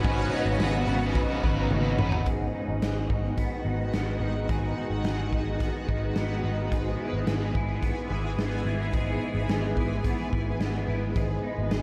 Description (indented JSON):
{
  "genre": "dream pop",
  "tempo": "108 BPM",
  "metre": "4/4",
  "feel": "straight",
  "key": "G# minor",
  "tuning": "A4 = 440 Hz",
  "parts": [
    { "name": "felt-muted upright piano", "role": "melody", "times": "0.0-1.7 s", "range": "G#5", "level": "-44 LUFS", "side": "equal", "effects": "none" },
    { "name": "overdriven electric guitar", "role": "accompaniment", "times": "0.0-2.3 s", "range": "G#2 to B4", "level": "-37 LUFS", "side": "equal", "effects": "tremolo, ensemble chorus" },
    { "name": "shimmering ambient pad", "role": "sustained chords", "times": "0.0-11.8 s", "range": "C#3 to G#4", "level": "-35 LUFS", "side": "equal", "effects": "chorus, built-in reverb, phaser" },
    { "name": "clean electric guitar", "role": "arpeggios", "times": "0.0-11.8 s", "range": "G#2 to B4", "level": "-36 LUFS", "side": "equal", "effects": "ensemble chorus, tape echo" },
    { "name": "vintage muted picked electric bass", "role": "bass", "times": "0.0-11.8 s", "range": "G#1", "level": "-32 LUFS", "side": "equal", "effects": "none" },
    { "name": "raw garage drum kit", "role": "drums", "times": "0.0-11.8 s", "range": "hi-hat, kick drum, ride cymbal, snare drum, tambourine, toms", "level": "-33 LUFS", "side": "equal", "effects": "none" },
    { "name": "synth chime", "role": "texture", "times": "0.0-1.0 s", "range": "none", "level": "barely audible", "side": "none", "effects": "none" }
  ],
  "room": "light reverb",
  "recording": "none",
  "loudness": "-28 LUFS",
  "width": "mono",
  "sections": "0.0-2.3 A section; 2.3-11.8 B section",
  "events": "drum fill 1.7-2.3",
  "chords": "0.0 G#m11; 2.3 G#m7; 6.7 E/G#; 11.2 G#m7",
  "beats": "| 0.05 0.60 1.16 1.71 | 2.27 2.83 3.38 3.94 | 4.49 5.05 5.60 6.16 | 6.71 7.27 7.83 8.38 | 8.94 9.49 10.05 10.60 | 11.16 11.71"
}